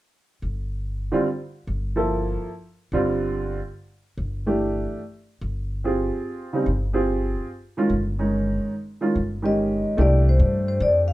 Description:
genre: modal jazz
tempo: 144 BPM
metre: 3/4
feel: swing 67% on 8ths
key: unclear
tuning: A4 = 440 Hz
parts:
  - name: upright bass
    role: bass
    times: 0.4-11.1 s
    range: G1 to G2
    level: -24 LUFS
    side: equal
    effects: none
  - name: dark upright piano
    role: accompaniment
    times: 1.1-11.1 s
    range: Db3 to A4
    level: -23 LUFS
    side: right 1 dB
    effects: none
  - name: vibraphone with soft mallets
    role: melody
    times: 9.5-11.1 s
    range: C5 to F5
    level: -23 LUFS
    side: left 2 dB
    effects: none
room: moderate studio reverb, RT60 0.7 s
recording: band playing live in one room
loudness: -21 LUFS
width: side -16 dB against mid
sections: 0.0-10.0 A section; 10.0-11.1 B section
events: none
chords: 0.0 Csus4; 5.0 Eb9sus4; 10.0 Csus4

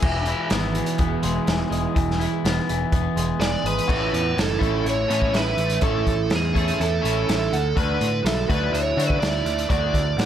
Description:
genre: indie rock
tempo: 124 BPM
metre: 4/4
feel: straight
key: A major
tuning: A4 = 440 Hz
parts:
  - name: overdriven electric guitar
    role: riff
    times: 0.0-10.0 s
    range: D3 to A4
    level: -28 LUFS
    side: left 8 dB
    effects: none
  - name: overdriven semi-hollow guitar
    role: riff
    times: 0.0-10.3 s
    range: E2 to E4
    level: -27 LUFS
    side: right 6 dB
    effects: analog chorus, digital delay
  - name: growling picked electric bass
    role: bass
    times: 0.0-10.3 s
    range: E1 to D3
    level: -26 LUFS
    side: equal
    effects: overdrive
  - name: raw garage drum kit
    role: drums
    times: 0.0-10.3 s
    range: crash cymbal, hi-hat, kick drum, snare drum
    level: -25 LUFS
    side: equal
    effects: none
  - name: biting lead guitar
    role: melody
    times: 3.4-10.3 s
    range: G#4 to D5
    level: -25 LUFS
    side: right 3 dB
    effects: overdrive
  - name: soft synth bell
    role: second line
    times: 3.9-10.3 s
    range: E5 to F#5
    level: -37 LUFS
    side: left 2 dB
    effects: chorus, digital delay
room: light reverb, studio reverb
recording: none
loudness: -20 LUFS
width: side -10 dB against mid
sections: 0.0-3.9 A section; 3.9-10.3 B section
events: none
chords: 0.0 E; 3.9 A; 7.5 Dadd9

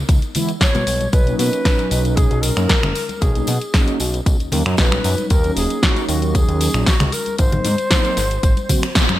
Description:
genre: nu-disco, nu disco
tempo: 115 BPM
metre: 4/4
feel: straight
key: unclear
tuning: A4 = 440 Hz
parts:
  - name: fat analog bass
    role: bass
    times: 0.0-9.2 s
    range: D#1 to B2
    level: -20 LUFS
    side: equal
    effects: tube saturation, sidechain pumping
  - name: electronic kick drum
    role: drums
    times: 0.1-9.1 s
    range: none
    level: -16 LUFS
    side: equal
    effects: none
  - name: house drum kit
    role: drums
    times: 0.1-9.2 s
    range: finger snaps, hi-hat, snare drum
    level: -21 LUFS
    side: equal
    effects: gated reverb
  - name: tambourine and congas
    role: percussion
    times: 0.1-9.2 s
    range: none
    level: -27 LUFS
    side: left 2 dB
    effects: none
  - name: mellow synth brass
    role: accompaniment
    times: 0.3-8.9 s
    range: A#2 to F#4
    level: -24 LUFS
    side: right 1 dB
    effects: chorus, sidechain pumping
  - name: breathy mellow silver concert flute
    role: melody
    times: 0.6-9.2 s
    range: F#4 to C#5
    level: -24 LUFS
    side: left 1 dB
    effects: digital delay
room: light reverb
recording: bright 1980s-style digital production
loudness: -15 LUFS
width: side -14 dB against mid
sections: 0.0-9.2 A section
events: band accent 9.0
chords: 0.0 C#m7; 0.9 Bmaj7; 5.3 D#m7; 7.4 G#7

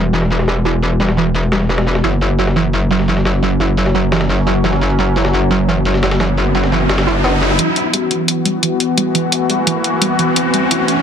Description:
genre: dark technical drum and bass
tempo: 173 BPM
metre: 4/4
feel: straight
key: E dorian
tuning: A4 = 444 Hz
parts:
  - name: sweeping resonant pad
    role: sustained chords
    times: 0.0-11.0 s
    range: E3 to F#4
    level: -19 LUFS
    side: left 2 dB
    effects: chorus
  - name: warbly dusty pluck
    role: arpeggios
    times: 0.0-10.8 s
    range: E3 to E4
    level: -20 LUFS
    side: right 5 dB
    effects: chorus, dub echo
  - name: metallic wobble bass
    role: bass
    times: 0.0-7.6 s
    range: E1 to F#1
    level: -15 LUFS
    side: left 1 dB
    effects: distortion, chorus
  - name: jungle sampler-style drum kit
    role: drums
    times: 0.1-7.6 s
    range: hi-hat, snare drum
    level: -23 LUFS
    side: equal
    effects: high-pass filter on snare, low-pass filter on snare, high-pass filter on hats, low-pass filter on hats
  - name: riser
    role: sound effects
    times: 5.9-11.0 s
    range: none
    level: -20 LUFS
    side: equal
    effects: none
  - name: electronic hi-hat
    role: drums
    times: 7.6-11.0 s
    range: none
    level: -17 LUFS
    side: left 1 dB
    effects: high-pass filter on snare, high-pass filter on hats, high-pass filter on perc, high-pass filter on room
room: light reverb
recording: dense, heavily limited modern master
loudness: -12 LUFS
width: side -8 dB against mid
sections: 0.0-7.6 A section; 7.6-11.0 B section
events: filter sweep on analog synth pad 0.0-7.6; riser 5.9-7.6, 7.6-11.0; build-up 7.6-11.0; filter sweep on synth arpeggio sound 7.6-11.0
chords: 0.0 Em; 2.0 F#5; 7.6 Em

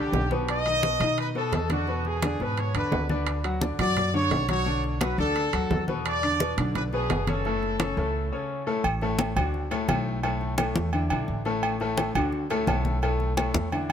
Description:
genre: latin, salsa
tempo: 172 BPM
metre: 4/4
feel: straight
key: unclear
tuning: A4 = 440 Hz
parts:
  - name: brilliant trumpet section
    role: melody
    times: 0.0-8.5 s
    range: F#4 to D#5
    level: -28 LUFS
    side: equal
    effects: tape echo
  - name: bright grand piano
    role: accompaniment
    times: 0.0-13.9 s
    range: A2 to F#5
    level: -29 LUFS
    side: left 2 dB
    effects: none
  - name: upright bass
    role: bass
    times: 0.0-13.9 s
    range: F#1 to B2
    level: -29 LUFS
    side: equal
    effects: none
  - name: congas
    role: percussion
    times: 0.1-13.9 s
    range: none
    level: -31 LUFS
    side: left 1 dB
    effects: none
  - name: timbales and agogo bells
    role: percussion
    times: 0.1-13.9 s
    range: none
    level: -32 LUFS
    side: right 3 dB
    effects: none
room: light reverb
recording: none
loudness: -24 LUFS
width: side -8 dB against mid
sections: 0.0-8.8 A section; 8.8-13.9 B section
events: break 8.1-8.8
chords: 0.5 B7; 1.9 E7; 3.3 Dmaj7; 4.7 Bm7; 6.1 E7; 7.5 F#m; 8.8 D/A; 9.5 D; 10.2 B7sus4; 10.9 E5; 11.6 D/A; 12.3 D; 13.0 B7sus4

